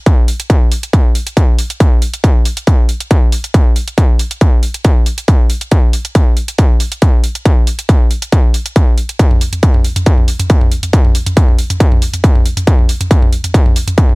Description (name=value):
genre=techno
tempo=138 BPM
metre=4/4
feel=straight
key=none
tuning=none
part: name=electronic kick drum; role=drums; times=0.1-14.1 s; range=none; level=-9 LUFS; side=equal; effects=distortion, overdrive
part: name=techno drum kit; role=drums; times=0.1-14.2 s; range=hi-hat, toms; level=-20 LUFS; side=right 1 dB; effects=overdrive, sidechain pumping on hats, sidechain pumping on toms
room=digital ambience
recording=none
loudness=-9 LUFS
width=side -27 dB against mid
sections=0.0-14.2 A section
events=none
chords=none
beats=0.06 | 0.50 0.93 1.37 1.80 | 2.24 2.67 3.11 3.54 | 3.98 4.41 4.85 5.28 | 5.72 6.15 6.59 7.02 | 7.46 7.89 8.32 8.76 | 9.20 9.63 10.06 10.50 | 10.93 11.37 11.80 12.24 | 12.67 13.11 13.54 13.98